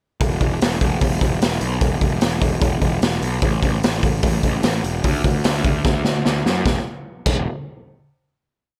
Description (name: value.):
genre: punk rock.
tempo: 149 BPM.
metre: 4/4.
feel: straight.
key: unclear.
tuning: A4 = 438 Hz.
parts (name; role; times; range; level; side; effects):
fuzz picked electric bass; bass; 0.2-7.5 s; E1 to F#2; -24 LUFS; equal; overdrive.
raw garage drum kit; drums; 0.2-7.4 s; crash cymbal, hi-hat, kick drum, snare drum; -22 LUFS; equal; none.
room: little or no reverb.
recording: none.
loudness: -20 LUFS.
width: mono.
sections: 0.2-6.7 verse; 6.7-8.3 final note.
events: drum fill 5.9-6.7.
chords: none.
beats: | 0.21 0.61 1.02 1.42 | 1.82 2.23 2.63 3.03 | 3.44 3.84 4.25 4.65 | 5.05 5.46 5.86 6.26 | 6.67 7.07.